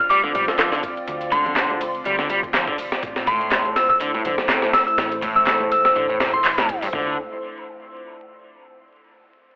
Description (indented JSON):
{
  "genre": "breakbeat, breaks",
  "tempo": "123 BPM",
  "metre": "4/4",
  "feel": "swing 55% on 16ths",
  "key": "D minor",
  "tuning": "A4 = 439 Hz",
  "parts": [
    { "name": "soft synth bell", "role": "melody", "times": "0.0-6.7 s", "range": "C6 to E6", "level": "-20 LUFS", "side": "equal", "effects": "chorus, AM radio sound, dub echo" },
    { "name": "deep dark ambient pad", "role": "sustained chords", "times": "0.0-7.2 s", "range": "A3 to D5", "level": "-27 LUFS", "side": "equal", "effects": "chorus, built-in reverb, sidechain pumping" },
    { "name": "hollow-body short-scale picked electric bass", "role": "bass", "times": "0.0-7.2 s", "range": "E1 to D2", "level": "-42 LUFS", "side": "equal", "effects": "none" },
    { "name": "crunchy overdriven guitar", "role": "riff", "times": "0.1-7.2 s", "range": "G2 to G3", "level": "-25 LUFS", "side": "equal", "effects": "tube saturation, dub echo" },
    { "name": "breakbeat sampler-style drum kit", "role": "drums", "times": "0.1-7.1 s", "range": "hi-hat, kick drum, snare drum, toms", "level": "-24 LUFS", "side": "equal", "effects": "none" },
    { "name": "house drum kit", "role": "drums", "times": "0.1-6.9 s", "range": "handclaps, hi-hat, ride cymbal", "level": "-25 LUFS", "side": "equal", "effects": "overdrive" },
    { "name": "congas", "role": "percussion", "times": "0.2-6.8 s", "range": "none", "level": "-40 LUFS", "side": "equal", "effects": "none" }
  ],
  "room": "moderate small room reverb, RT60 0.6 s",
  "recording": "vinyl crackle, telephone sound",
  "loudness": "-17 LUFS",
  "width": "side -28 dB against mid",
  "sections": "0.0-6.9 A section; 6.9-8.9 B section",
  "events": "drop 0.0-6.9; band accent 6.4",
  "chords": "0.0 Dm7; 3.0 Am; 6.9 Dm7",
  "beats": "0.10 0.59 | 1.08 1.57 2.06 2.54 | 3.03 3.52 4.01 4.50 | 4.98 5.47 5.96 6.45 | 6.93"
}